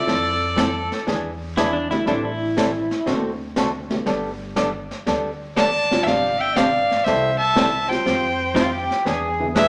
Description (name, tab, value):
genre	country, western swing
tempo	120 BPM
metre	4/4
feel	swing 68% on 8ths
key	unclear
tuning	A4 = 440 Hz
part	clear fiddle	melody	0.0-0.9, 5.6-9.7 s	D5 to A5	-24 LUFS	equal	none
part	bright clarinet	second line	0.0-0.9, 5.6-9.7 s	A4 to E5	-26 LUFS	equal	none
part	honky-tonk upright piano	accompaniment	0.0-9.7 s	G3 to G#4	-30 LUFS	equal	none
part	archtop guitar, miked and amplified	accompaniment	0.1-9.7 s	C3 to C5	-26 LUFS	equal	none
part	upright bass	bass	0.1-9.7 s	G1 to F2	-35 LUFS	equal	none
part	jazz brush drum kit	drums	0.1-9.7 s	brushed snare drum, hi-hat, snare drum	-30 LUFS	equal	none
part	pedal steel guitar	second line	0.6-3.2, 8.6-9.5 s	D4 to A4	-26 LUFS	equal	none
room	moderate large studio reverb, RT60 1.1 s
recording	none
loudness	-21 LUFS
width	mono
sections	0.0-9.7 A section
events	none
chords	0.1 Fmaj7; 1.1 E7; 2.1 Am7; 3.1 D7; 4.1 Gadd9; 6.1 G7sus4; 7.1 C6; 8.1 Fsus2; 9.1 E7